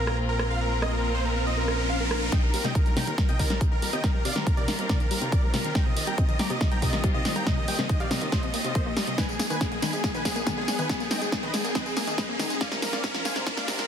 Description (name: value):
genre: uplifting trance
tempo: 140 BPM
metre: 4/4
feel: straight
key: Eb major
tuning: A4 = 440 Hz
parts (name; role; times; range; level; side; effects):
- big supersaw lead; melody; 0.0-13.9 s; Ab4 to D6; -31 LUFS; right 1 dB; sidechain pumping, ping-pong delay
- clear symphonic string section; sustained chords; 0.0-13.9 s; Eb3 to Ab4; -36 LUFS; left 1 dB; sidechain pumping
- fat analog bass; bass; 0.0-13.9 s; Ab1 to F2; -34 LUFS; equal; sidechain pumping, high-pass filter
- riser; sound effects; 0.5-13.9 s; none; -35 LUFS; equal; none
- punchy analog drum machine; drums; 0.1-13.9 s; hi-hat, rim click, snare drum, tambourine; -30 LUFS; equal; sidechain pumping on hats, sidechain pumping on perc
- wide unison pluck; arpeggios; 2.3-13.9 s; C3 to Bb3; -33 LUFS; left 3 dB; sidechain pumping, ping-pong delay
- electronic kick drum; drums; 2.3-13.8 s; none; -26 LUFS; equal; none
room: light reverb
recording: dense, heavily limited modern master, high-pass filter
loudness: -23 LUFS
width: side -8 dB against mid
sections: 0.0-2.3 A section; 2.3-13.9 B section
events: riser 0.5-2.3, 2.3-13.9; build-up 2.3-13.9; drum fill 2.3-13.9; filter sweep on synth arpeggio sound 2.3-13.9; filter sweep 2.3-13.9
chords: 0.0 Bbsus2; 2.3 Eb6; 9.2 Abmadd9; 12.6 Bbsus2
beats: 0.18 | 0.61 1.04 1.47 1.90 | 2.32 2.75 3.18 3.61 | 4.04 4.47 4.89 5.32 | 5.75 6.18 6.61 7.04 | 7.47 7.89 8.32 8.75 | 9.18 9.61 10.04 10.47 | 10.89 11.32 11.75 12.18 | 12.61 13.04 13.47